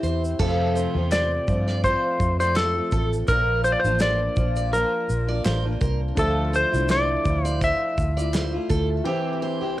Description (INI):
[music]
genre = acoustic pop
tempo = 83 BPM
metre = 4/4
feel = swing 55% on 16ths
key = F major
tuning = A4 = 440 Hz
[part]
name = picked plugged-in steel-string acoustic guitar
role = accompaniment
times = 0.0-9.8 s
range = F2 to G4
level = -28 LUFS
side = left 1 dB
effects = double-tracked left and right, cassette tape, plate reverb
[part]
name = picked steel-string acoustic guitar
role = arpeggios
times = 0.0-9.8 s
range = G4 to D5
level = -31 LUFS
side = right 3 dB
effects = cassette tape, plate reverb, tape echo
[part]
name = vintage muted fingered electric bass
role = bass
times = 0.0-9.0 s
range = A1 to G2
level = -25 LUFS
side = equal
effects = none
[part]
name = cloth-damped thuddy drum kit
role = drums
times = 0.0-8.9 s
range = crash cymbal, kick drum, shaker, snare drum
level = -27 LUFS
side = equal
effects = cassette tape
[part]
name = clean lap steel guitar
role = melody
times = 1.1-8.7 s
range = A4 to E5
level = -23 LUFS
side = left 1 dB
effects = cassette tape, plate reverb
[part]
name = group handclap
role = percussion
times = 1.1-8.5 s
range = none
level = -37 LUFS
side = left 2 dB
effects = none
[part]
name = clear grand piano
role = accompaniment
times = 6.2-9.8 s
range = E3 to E5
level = -33 LUFS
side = left 2 dB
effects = cassette tape, plate reverb
[sound]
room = light reverb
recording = home recording on cassette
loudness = -20 LUFS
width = side -15 dB against mid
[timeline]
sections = 0.4-9.8 A section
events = break 9.1-9.8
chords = 0.4 F; 3.3 Bb; 6.2 Dmadd9; 9.1 C/E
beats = | 0.40 1.12 1.84 2.56 | 3.29 4.01 4.73 5.45 | 6.17 6.90 7.62 8.34 | 9.06 9.79